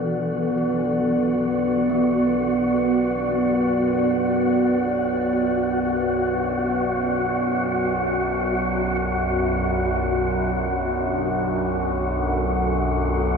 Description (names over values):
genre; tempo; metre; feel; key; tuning
dark ambient drone; free time; none; none; B minor; A4 = 440 Hz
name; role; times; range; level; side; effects
dark analog pad; sustained chords; 0.0-13.4 s; B2 to F#5; -23 LUFS; equal; chorus
gamelan-type bronze metallophone; arpeggios; 0.0-7.4 s; E3 to A4; -29 LUFS; right 1 dB; ping-pong delay
overtone-sweeping drone; drone; 0.0-13.4 s; B1 to F#2; -27 LUFS; right 1 dB; chorus, built-in reverb
wind-like tuned noise texture; texture; 0.0-13.4 s; F#4 to F#5; -26 LUFS; left 1 dB; built-in reverb
room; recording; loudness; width
wet huge ambient reverb, RT60 7.8 s; dark, warm production; -20 LUFS; side -5 dB against mid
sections
0.0-13.4 A section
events
fade-in on synth drone 0.0-13.4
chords
0.0 Bm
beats
free time